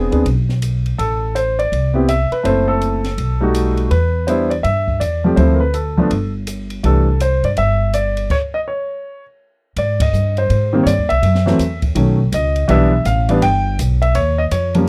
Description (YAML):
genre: jazz piano trio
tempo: 164 BPM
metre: 4/4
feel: swing 64% on 8ths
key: unclear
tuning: A4 = 441 Hz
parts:
  - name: warm grand piano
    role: melody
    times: 0.0-14.9 s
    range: Eb3 to G5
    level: -19 LUFS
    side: equal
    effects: none
  - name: upright bass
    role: bass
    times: 0.0-14.9 s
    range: F#1 to Ab2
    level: -20 LUFS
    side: equal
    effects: none
  - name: open jazz drum kit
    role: drums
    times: 0.1-14.8 s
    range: crash cymbal, hi-hat, kick drum, ride cymbal, snare drum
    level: -28 LUFS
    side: equal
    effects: none
room: little or no reverb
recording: dry, close 1970s-style studio recording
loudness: -16 LUFS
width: mono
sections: 0.0-9.8 A section; 9.8-14.9 B section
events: stop 8.3-9.8; band accent 9.9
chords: 0.0 E7 (rootless); 1.0 Am; 2.4 F#m7b5; 3.2 B7b13; 3.9 Em7; 5.4 Dm9; 6.1 N.C.; 6.8 C6; 8.3 N.C.; 9.8 Abmaj7; 11.2 F#7(no3); 12.0 B7; 12.7 Em7; 14.1 Eb7(no3)